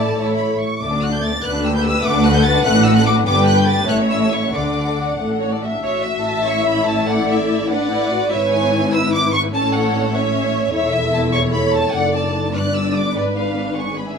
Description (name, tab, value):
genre	quick classical-period movement for string orchestra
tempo	98 BPM (dotted quarters)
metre	6/8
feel	rubato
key	D major, A major from 5.8 s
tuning	A4 = 439 Hz
part	rich chamber violin section	melody	0.0-14.2 s	C#5 to A6	-22 LUFS	left 1 dB	none
part	warm symphonic violin section	second line	0.0-14.2 s	A3 to G5	-22 LUFS	equal	none
part	rich studio viola section	accompaniment	0.0-14.2 s	C#4 to E5	-22 LUFS	left 1 dB	none
part	dark chamber cello section	bass	0.0-14.2 s	D2 to D3	-22 LUFS	left 1 dB	none
part	warm chamber double bass section	bass	0.0-14.2 s	E1 to D2	-23 LUFS	right 2 dB	none
room	light reverb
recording	none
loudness	-15 LUFS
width	side -6 dB against mid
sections	0.0-5.8 A section; 5.8-14.2 B section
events	none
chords	0.2 A; 0.8 D; 1.4 G/D; 2.1 D; 3.3 G; 3.9 A; 4.5 D; 5.8 A; 7.1 Bm7/A; 8.3 E/G#; 9.5 A; 10.7 A/E; 11.9 D/F#; 12.5 Gmaj7; 13.2 G#dim7